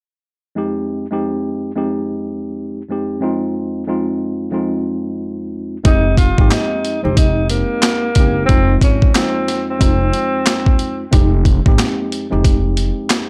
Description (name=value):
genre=hip hop, boom-bap hip-hop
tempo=91 BPM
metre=4/4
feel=swing 60% on 16ths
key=F minor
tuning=A4 = 445 Hz
part: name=mellow tine electric piano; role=accompaniment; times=0.6-13.3 s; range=F2 to G4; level=-22 LUFS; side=equal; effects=cassette tape, high-pass filter, low-pass filter
part: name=boom bap sampler-style drum kit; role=drums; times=5.8-13.3 s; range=handclaps, hi-hat, kick drum, snare drum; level=-16 LUFS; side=equal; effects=none
part: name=breathy tenor saxophone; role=melody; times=5.9-11.1 s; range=Bb3 to F4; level=-22 LUFS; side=equal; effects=high-pass filter, low-pass filter, tape echo
part: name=upright bass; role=bass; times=5.9-12.9 s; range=F1 to Ab1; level=-19 LUFS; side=equal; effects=none
part: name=finger snap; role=percussion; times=6.5-13.3 s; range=none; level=barely audible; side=none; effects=none
room=little or no reverb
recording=dry, gritty hardware recording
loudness=-16 LUFS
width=mono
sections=0.6-5.9 A section; 5.9-13.3 B section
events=none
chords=0.6 Fm7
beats=| 0.58 1.24 1.90 2.56 | 3.21 3.87 4.53 5.19 | 5.85 6.51 7.17 7.83 | 8.49 9.15 9.81 10.47 | 11.13 11.79 12.45 13.11